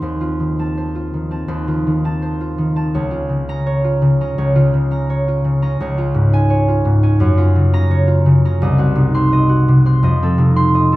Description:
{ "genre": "classical, solo harp piece", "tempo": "84 BPM", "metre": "4/4", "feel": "rubato", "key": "Bb minor", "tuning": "A4 = 440 Hz", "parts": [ { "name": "concert harp", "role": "solo", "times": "0.0-11.0 s", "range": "C2 to C6", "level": "-13 LUFS", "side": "equal", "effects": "none" } ], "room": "wet recital hall reverb, RT60 1.4 s", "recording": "none", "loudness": "-13 LUFS", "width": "side -18 dB against mid", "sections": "0.0-11.0 A section", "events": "none", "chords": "0.0 F7/Eb; 2.9 Bbm/Db; 5.8 Db; 7.2 Gbmaj7; 8.6 Cdim; 10.0 F7" }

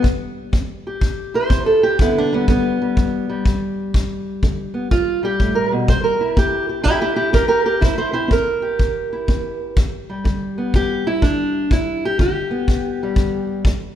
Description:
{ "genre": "acoustic country blues, solo or duo", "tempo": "123 BPM", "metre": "4/4", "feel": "swing 65% on 8ths", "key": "G major", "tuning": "A4 = 439 Hz", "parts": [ { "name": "fingerpicked steel-string acoustic guitar", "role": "melody", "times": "0.0-14.0 s", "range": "D2 to C5", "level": "-18 LUFS", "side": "right 1 dB", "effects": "none" }, { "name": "kick drum", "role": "drums", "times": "0.0-13.8 s", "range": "none", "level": "-18 LUFS", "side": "equal", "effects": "none" } ], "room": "light reverb", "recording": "none", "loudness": "-16 LUFS", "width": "side -10 dB against mid", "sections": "0.0-14.0 A section", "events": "steel-string acoustic guitar solo 0.0-14.0", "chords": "0.0 C; 2.0 G; 5.9 C7; 9.8 G" }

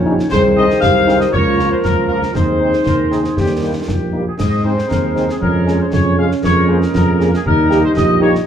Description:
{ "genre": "military-style march for wind band", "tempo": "118 BPM", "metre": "2/4", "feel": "straight", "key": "Ab major", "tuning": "A4 = 441 Hz", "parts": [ { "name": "dark woodwind section", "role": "second line", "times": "0.0-8.5 s", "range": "Eb4 to Eb5", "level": "-22 LUFS", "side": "left 2 dB", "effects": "none" }, { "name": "mellow euphonium", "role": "second line", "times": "0.0-8.4 s", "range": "C4 to Ab4", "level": "-20 LUFS", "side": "right 3 dB", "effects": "none" }, { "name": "clear trombone section", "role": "sustained chords", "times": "0.0-8.5 s", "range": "Eb3 to Eb4", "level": "-23 LUFS", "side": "right 1 dB", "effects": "none" }, { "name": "mellow tuba", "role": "bass", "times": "0.0-8.4 s", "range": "Bb1 to Ab2", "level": "-18 LUFS", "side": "right 1 dB", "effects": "none" }, { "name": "mellow French horn section", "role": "accompaniment", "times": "0.1-8.3 s", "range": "F3 to Ab4", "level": "-21 LUFS", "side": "left 1 dB", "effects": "none" }, { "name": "concert snare drum, clash cymbals and concert bass drum", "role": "drums", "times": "0.2-8.5 s", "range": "none", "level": "-21 LUFS", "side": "left 1 dB", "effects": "none" }, { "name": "warm trumpet section", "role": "melody", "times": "0.3-8.3 s", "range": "Ab4 to F5", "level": "-19 LUFS", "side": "left 2 dB", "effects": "none" } ], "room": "moderate plate reverb, RT60 1.3 s", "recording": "heard from further back in the room", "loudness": "-12 LUFS", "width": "side -9 dB against mid", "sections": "0.0-8.5 A section", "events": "none", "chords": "0.3 Ab/C; 1.3 Bbm/Db; 2.3 Ab/Eb; 3.4 Eb; 4.4 Ab; 5.4 Db/F; 6.4 Bbm7/F; 7.4 Eb" }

